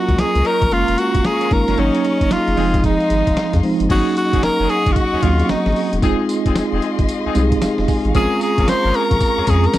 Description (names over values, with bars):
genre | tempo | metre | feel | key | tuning
R&B, new jack swing | 113 BPM | 4/4 | swing 63% on 16ths | unclear | A4 = 440 Hz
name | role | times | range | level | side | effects
bright tenor saxophone | melody | 0.0-9.8 s | Db4 to C5 | -19 LUFS | equal | slapback echo
mellow tine electric piano | accompaniment | 0.0-9.8 s | F3 to Ab5 | -19 LUFS | right 2 dB | medium stereo tremolo
warm studio string section | sustained chords | 0.0-9.8 s | Ab4 to Db6 | -26 LUFS | left 4 dB | none
round analog bass | bass | 0.1-9.8 s | Fb1 to F2 | -20 LUFS | equal | none
boom bap sampler-style drum kit | drums | 0.1-9.8 s | crash cymbal, hi-hat, kick drum, snare drum, tambourine | -21 LUFS | equal | none
clear horn section | stabs | 0.4-9.5 s | Bb3 to Bb4 | -27 LUFS | left 10 dB | slapback echo
room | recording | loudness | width
little or no reverb | dry, close 1970s-style studio recording | -14 LUFS | side -14 dB against mid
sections
0.0-3.9 A section; 3.9-9.8 B section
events
tine electric piano fill 7.4-8.1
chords
0.0 Ebm7; 0.7 Gbmaj7; 1.8 Ab7sus4; 2.6 Fm7; 3.9 Ab7sus4; 6.0 Fm7; 8.1 Bbm7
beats
0.18 0.71 1.25 | 1.78 2.31 2.84 3.37 | 3.90 4.43 4.96 5.49 | 6.02 6.55 7.09 7.62 | 8.15 8.68 9.21 9.74